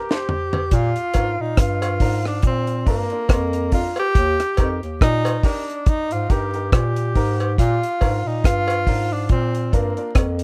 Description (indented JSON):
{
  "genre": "roots reggae",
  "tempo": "70 BPM",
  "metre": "4/4",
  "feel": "swing 57% on 16ths",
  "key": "Bb mixolydian",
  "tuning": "A4 = 440 Hz",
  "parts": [
    { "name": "breathy tenor saxophone", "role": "melody", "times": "0.0-10.3 s", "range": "Bb3 to G4", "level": "-26 LUFS", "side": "equal", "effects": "tape echo" },
    { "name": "warm upright piano", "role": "stabs", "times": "0.0-10.1 s", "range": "D4 to C5", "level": "-33 LUFS", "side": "equal", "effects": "none" },
    { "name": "deep reggae drum kit", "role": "drums", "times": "0.1-10.4 s", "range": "hi-hat, kick drum, rim click, snare drum, toms", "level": "-21 LUFS", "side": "equal", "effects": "none" },
    { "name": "cowbell", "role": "percussion", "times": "0.5-10.4 s", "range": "none", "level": "-31 LUFS", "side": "equal", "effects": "none" },
    { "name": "mellow bass clarinet", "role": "bass", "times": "0.7-10.4 s", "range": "Eb2 to Bb2", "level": "-25 LUFS", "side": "equal", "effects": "none" }
  ],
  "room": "little or no reverb",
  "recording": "rough home demo mix, vinyl crackle",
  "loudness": "-20 LUFS",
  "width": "mono",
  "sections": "0.7-10.4 A section",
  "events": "drum fill 0.0-0.7",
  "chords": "0.0 Eb (rootless); 0.7 Bb; 4.1 Eb; 7.6 Bb"
}